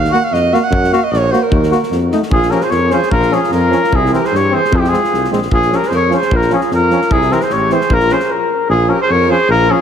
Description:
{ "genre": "balkan folk, Balkan brass band", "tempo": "150 BPM", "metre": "2/4", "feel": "swing 54% on 16ths", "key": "Bb dorian sharp4", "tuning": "A4 = 437 Hz", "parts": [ { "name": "warm alto saxophone", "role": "second line", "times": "0.0-9.8 s", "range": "E4 to Gb5", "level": "-18 LUFS", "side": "right 4 dB", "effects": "none" }, { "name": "warm tuba", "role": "bass", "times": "0.0-9.7 s", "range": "A1 to G2", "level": "-17 LUFS", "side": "left 1 dB", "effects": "none" }, { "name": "natural country drum kit", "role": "percussion", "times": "0.0-8.2 s", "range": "kick drum, snare drum", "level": "-21 LUFS", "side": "left 1 dB", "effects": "none" }, { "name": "brilliant trombone", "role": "accompaniment", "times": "0.1-9.8 s", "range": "C4 to Gb4", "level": "-21 LUFS", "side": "left 6 dB", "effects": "none" }, { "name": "clear euphonium", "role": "accompaniment", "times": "0.1-9.8 s", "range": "E3 to Bb3", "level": "-21 LUFS", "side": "right 5 dB", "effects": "none" }, { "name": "mellow trumpet", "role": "melody", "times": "2.3-9.8 s", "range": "G4 to Db5", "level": "-15 LUFS", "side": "left 2 dB", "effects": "none" } ], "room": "moderate concert hall reverb, RT60 2.3 s", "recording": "heavily compressed radio sound, faint mains hum", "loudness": "-11 LUFS", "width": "side -8 dB against mid", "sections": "0.0-2.3 A section; 2.3-8.7 B section; 8.7-9.8 B section", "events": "alto saxophone solo 0.0-2.3; stop 8.3-8.7", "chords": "0.0 Ebm; 0.7 Gb; 1.5 Ebm; 1.9 F7; 2.3 Bbm; 3.9 C; 4.7 Fm; 5.5 Bbm; 7.1 C; 7.9 Bbm" }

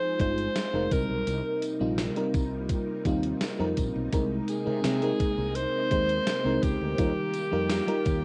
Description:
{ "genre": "1980s-style pop", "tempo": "84 BPM", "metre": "4/4", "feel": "straight", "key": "C minor", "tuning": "A4 = 441 Hz", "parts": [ { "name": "bright alto saxophone", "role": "melody", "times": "0.0-8.2 s", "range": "G4 to C5", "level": "-32 LUFS", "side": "equal", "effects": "analog delay" }, { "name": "FM electric piano with soft pad layer", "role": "accompaniment", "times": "0.0-8.2 s", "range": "C3 to C5", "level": "-31 LUFS", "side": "equal", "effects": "chorus, cassette tape" }, { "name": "soft string machine", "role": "sustained chords", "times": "0.0-8.2 s", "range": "C3 to Ab4", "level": "-42 LUFS", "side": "equal", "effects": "ensemble chorus, cassette tape" }, { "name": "woody fretless electric bass", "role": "bass", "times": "0.2-8.2 s", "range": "F1 to C3", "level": "-35 LUFS", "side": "equal", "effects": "none" }, { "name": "gated 80s digital drum machine", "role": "drums", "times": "0.2-8.2 s", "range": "hi-hat, kick drum, snare drum", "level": "-33 LUFS", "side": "equal", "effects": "gated reverb, gated reverb snare, cassette tape" }, { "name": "tambourine", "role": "percussion", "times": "0.6-8.2 s", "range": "none", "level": "-51 LUFS", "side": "equal", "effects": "none" } ], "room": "moderate booth ambience, RT60 0.2 s", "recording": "home recording on cassette, nothing above 10.9 kHz", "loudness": "-28 LUFS", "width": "mono", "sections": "0.0-8.2 A section", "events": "none", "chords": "0.0 Fm7; 0.9 Cm7; 4.1 Abadd9/C; 7.0 Ebadd9" }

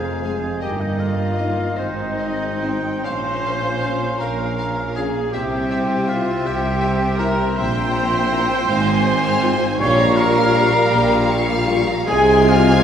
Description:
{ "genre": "classical, slow romantic movement for symphony orchestra", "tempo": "44-55 BPM (dotted quarters)", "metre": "6/8", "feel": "rubato", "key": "F minor", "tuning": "A4 = 441 Hz", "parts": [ { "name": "concert flute", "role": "second line", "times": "0.0-12.8 s", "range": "Eb5 to Db6", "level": "-25 LUFS", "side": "equal", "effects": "none" }, { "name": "rich chamber violin section", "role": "second line", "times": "0.0-12.8 s", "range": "C5 to Ab5", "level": "-27 LUFS", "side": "left 2 dB", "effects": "none" }, { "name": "warm clarinet", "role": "second line", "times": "0.0-12.8 s", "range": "C5 to F5", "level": "-31 LUFS", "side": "equal", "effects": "none" }, { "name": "warm oboe", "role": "second line", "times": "0.0-12.8 s", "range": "Eb4 to Db5", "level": "-28 LUFS", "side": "equal", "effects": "none" }, { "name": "mellow bassoon", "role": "accompaniment", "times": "0.0-12.8 s", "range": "G3 to Db4", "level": "-27 LUFS", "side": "equal", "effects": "none" }, { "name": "rich chamber viola section", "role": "accompaniment", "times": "0.0-12.8 s", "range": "Eb4 to Db5", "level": "-23 LUFS", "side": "right 1 dB", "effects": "none" }, { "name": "dark tuba", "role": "bass", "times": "0.0-12.8 s", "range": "F1 to C2", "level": "-23 LUFS", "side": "equal", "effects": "none" }, { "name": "rich studio double bass section", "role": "bass", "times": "0.0-12.8 s", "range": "F1 to C2", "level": "-27 LUFS", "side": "right 1 dB", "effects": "none" }, { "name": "rich symphonic cello section", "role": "bass", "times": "0.0-12.8 s", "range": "F2 to C3", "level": "-26 LUFS", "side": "right 2 dB", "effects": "none" }, { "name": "rich studio violin section", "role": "melody", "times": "0.2-12.8 s", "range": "C5 to Ab6", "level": "-32 LUFS", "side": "left 3 dB", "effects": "none" }, { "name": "mellow French horn section", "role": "sustained chords", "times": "0.2-11.8 s", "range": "G3 to F4", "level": "-28 LUFS", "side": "left 4 dB", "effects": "none" } ], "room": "wet scoring stage reverb, RT60 1.9 s", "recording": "heard from further back in the room", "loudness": "-16 LUFS", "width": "side -8 dB against mid", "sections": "0.0-12.8 A section", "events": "none", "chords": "0.0 Fm; 0.6 Eb/G; 1.8 Ab; 3.0 Bbm; 5.3 C; 7.6 C7/Bb; 8.7 Fm/Ab; 9.8 Gm7b5/Bb; 12.1 Fm/C" }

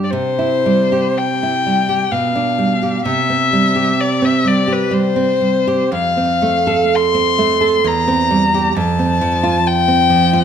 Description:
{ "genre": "romantic duo for violin and classical guitar", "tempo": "62 BPM", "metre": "3/4", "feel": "uneven beats, rubato", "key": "C major", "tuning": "A4 = 437 Hz", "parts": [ { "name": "rich violin", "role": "melody", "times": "0.0-10.4 s", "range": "B4 to C6", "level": "-16 LUFS", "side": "left 4 dB", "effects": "none" }, { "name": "nylon-string guitar", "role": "accompaniment", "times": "0.0-10.4 s", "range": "E2 to A4", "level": "-16 LUFS", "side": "right 4 dB", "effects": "none" } ], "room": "moderate recital hall reverb, RT60 1.7 s", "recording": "none", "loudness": "-13 LUFS", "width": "side -8 dB against mid", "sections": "0.1-10.4 A section", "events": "none", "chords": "0.1 C; 2.1 G7/B; 3.1 C; 5.9 F; 7.9 C7/E; 8.8 F" }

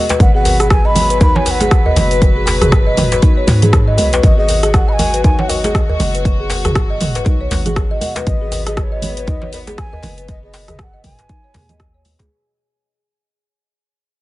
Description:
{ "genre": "afro house", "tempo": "119 BPM", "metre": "4/4", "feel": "swing 58% on 16ths", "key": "G# minor pentatonic", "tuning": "A4 = 441 Hz", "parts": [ { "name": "dark studio string section", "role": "sustained chords", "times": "0.0-12.3 s", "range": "B2 to B4", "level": "-23 LUFS", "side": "left 1 dB", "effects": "sidechain pumping" }, { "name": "folk marimba with soft mallets", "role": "arpeggios", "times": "0.0-12.3 s", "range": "D#4 to D#5", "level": "-20 LUFS", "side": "left 1 dB", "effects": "sidechain pumping, tape echo" }, { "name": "deep house drum kit", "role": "drums", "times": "0.1-12.3 s", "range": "cabasa, hi-hat, rim click, toms", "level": "-20 LUFS", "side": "equal", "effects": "none" }, { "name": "congas", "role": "percussion", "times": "0.1-12.3 s", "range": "none", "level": "-22 LUFS", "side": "right 2 dB", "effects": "none" }, { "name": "djembe", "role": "percussion", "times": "0.1-12.3 s", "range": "none", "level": "-22 LUFS", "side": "equal", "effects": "none" }, { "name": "breathy bass bansuri", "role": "melody", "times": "0.2-12.0 s", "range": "C#5 to B5", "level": "-21 LUFS", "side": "equal", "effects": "tape echo" }, { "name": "warm 808-style bass", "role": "bass", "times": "0.2-12.3 s", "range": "F#1 to G#2", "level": "-19 LUFS", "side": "equal", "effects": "sidechain pumping" }, { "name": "electronic kick drum", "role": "drums", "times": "0.2-11.9 s", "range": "none", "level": "-13 LUFS", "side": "equal", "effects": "none" } ], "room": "small room ambience", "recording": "nothing above 10.6 kHz", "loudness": "-11 LUFS", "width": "side -17 dB against mid", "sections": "0.0-12.3 A section", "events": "drop 0.0-12.3; fade-out 4.2-12.3", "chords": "0.0 G#m7" }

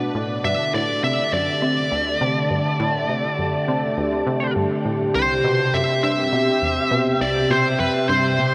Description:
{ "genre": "ambient, sequencer-driven space music", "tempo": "102 BPM", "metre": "4/4", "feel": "straight", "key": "unclear", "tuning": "A4 = 440 Hz", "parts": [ { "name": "phased analog pad", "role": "sustained chords", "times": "0.0-8.5 s", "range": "B2 to A5", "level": "-25 LUFS", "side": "equal", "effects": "phaser, chorus" }, { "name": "tight sequenced synth", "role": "riff", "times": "0.0-8.5 s", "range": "C2 to C3", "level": "-28 LUFS", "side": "equal", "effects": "chorus, delay" }, { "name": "smooth overdriven lead guitar", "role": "melody", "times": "0.4-8.5 s", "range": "B4 to E5", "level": "-24 LUFS", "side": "equal", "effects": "delay" } ], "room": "wet huge ambient reverb, RT60 8.7 s", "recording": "none", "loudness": "-21 LUFS", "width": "mono", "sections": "0.0-8.5 A section", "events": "none", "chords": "0.4 Dsus4; 5.2 C" }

